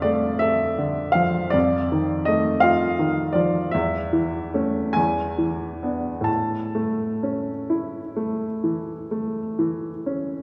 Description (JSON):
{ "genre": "classical, romantic nocturne for solo piano", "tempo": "42-58 BPM (dotted quarters)", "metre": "12/8", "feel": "rubato", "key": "unclear", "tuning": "A4 = 441 Hz", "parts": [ { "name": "clear upright piano", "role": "solo", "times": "0.0-10.4 s", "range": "E2 to A5", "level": "-23 LUFS", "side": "equal", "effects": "none" } ], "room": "wet concert hall reverb, RT60 2.5 s", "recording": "recorded in a church or concert hall", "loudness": "-23 LUFS", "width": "mono", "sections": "0.0-10.4 A section", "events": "none", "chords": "0.0 Dm/F; 1.5 F7; 3.7 A/E; 5.0 E7; 6.3 A" }